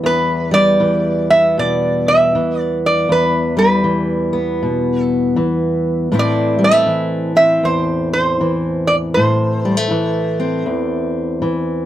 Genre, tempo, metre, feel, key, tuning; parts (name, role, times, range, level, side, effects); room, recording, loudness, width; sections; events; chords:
acoustic country blues, solo or duo; 79 BPM; 4/4; swing 62% on 8ths; E minor; A4 = 440 Hz
fingerpicked steel-string acoustic guitar; accompaniment; 0.0-11.9 s; E2 to E4; -16 LUFS; left 1 dB
lap resonator guitar; melody; 0.1-10.6 s; B4 to E5; -15 LUFS; right 1 dB
moderate small room reverb, RT60 0.5 s; dark, warm production; -14 LUFS; side -12 dB against mid
0.0-11.9 A section
0.0 Em; 6.1 Am